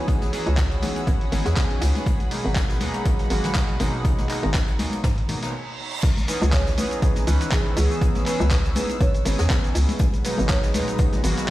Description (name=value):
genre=deep house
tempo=121 BPM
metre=4/4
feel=swing 55% on 16ths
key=C# minor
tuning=A4 = 440 Hz
part: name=warm analog pad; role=sustained chords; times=0.0-11.5 s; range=E3 to E6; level=-36 LUFS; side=right 2 dB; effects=chorus, sidechain pumping
part: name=chorused polysynth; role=stabs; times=0.0-11.5 s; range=A#2 to B4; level=-29 LUFS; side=equal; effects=sidechain pumping, tape echo
part: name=dark studio violin section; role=texture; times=0.0-5.5 s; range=F#4 to F#5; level=-40 LUFS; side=left 3 dB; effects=sidechain pumping
part: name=warm chamber string section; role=texture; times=0.0-11.5 s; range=C#4 to E6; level=-38 LUFS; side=equal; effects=sidechain pumping
part: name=dusty soul sampler-style drum kit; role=drums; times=0.1-11.5 s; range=crash cymbal, handclaps, hi-hat, shaker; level=-31 LUFS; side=equal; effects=studio reverb
part: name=electronic kick drum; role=drums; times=0.1-11.1 s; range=none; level=-22 LUFS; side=equal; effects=studio reverb
part: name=jazz brush drum kit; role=drums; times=0.1-11.5 s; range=hi-hat, snare drum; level=-38 LUFS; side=left 2 dB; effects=high-pass filter on hats, studio reverb, high-pass filter on snare, high-pass filter on room
part: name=congas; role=percussion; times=0.2-11.3 s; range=none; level=-32 LUFS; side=left 2 dB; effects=none
part: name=hollow knocking FM bass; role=bass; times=0.5-11.3 s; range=G#1 to G#2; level=-23 LUFS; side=equal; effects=sidechain pumping
part: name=reverse cymbal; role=sound effects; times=5.4-6.0 s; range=none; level=-33 LUFS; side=right 5 dB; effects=none
part: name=marimba with soft mallets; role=melody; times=6.3-11.5 s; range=G#4 to C#5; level=-30 LUFS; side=right 2 dB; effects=tape echo
room=small room reverb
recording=played on a big sound system in a bare room, stone room reverb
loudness=-20 LUFS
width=side -16 dB against mid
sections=0.0-6.0 A section; 6.0-11.5 B section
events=reverse cymbal 5.4-6.0; stop 5.5-6.0; drop 6.0-11.5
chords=0.0 C#m7; 2.1 G#m7; 6.0 C#m7; 10.0 G#m7